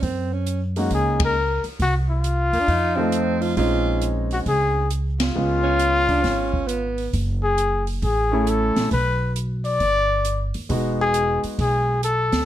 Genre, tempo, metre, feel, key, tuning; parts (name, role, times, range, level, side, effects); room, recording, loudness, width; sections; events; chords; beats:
jazz, small-group swing and bop; 135 BPM; 4/4; swing 66% on 8ths; F# minor from 7.1 s; A4 = 439 Hz
clear alto saxophone; second line; 0.0-7.1 s; Bb3 to F4; -26 LUFS; right 6 dB
upright bass; bass; 0.0-12.5 s; E1 to Gb2; -24 LUFS; equal
open jazz drum kit; drums; 0.0-12.4 s; hi-hat, kick drum, ride cymbal, snare drum; -28 LUFS; right 1 dB
mellow trumpet; melody; 0.8-12.5 s; F4 to D5; -21 LUFS; left 2 dB
clear concert grand piano; accompaniment; 0.8-11.9 s; F3 to A4; -25 LUFS; equal
light reverb; -19 LUFS; side -12 dB against mid
0.0-7.1 A section; 7.1-12.5 B section
band accent 1.1, 5.1; break 6.7-7.1
0.0 Gb69; 1.8 Cadd11; 2.7 F7; 3.6 Bbm11; 5.4 Db7; 7.1 F#m7; 8.9 B(#5, no3); 10.7 Emaj9
| 0.03 0.47 0.91 1.36 | 1.80 2.24 2.69 3.13 | 3.58 4.02 4.47 4.91 | 5.36 5.80 6.25 6.69 | 7.13 7.58 8.03 8.47 | 8.92 9.36 9.81 10.25 | 10.70 11.14 11.59 12.03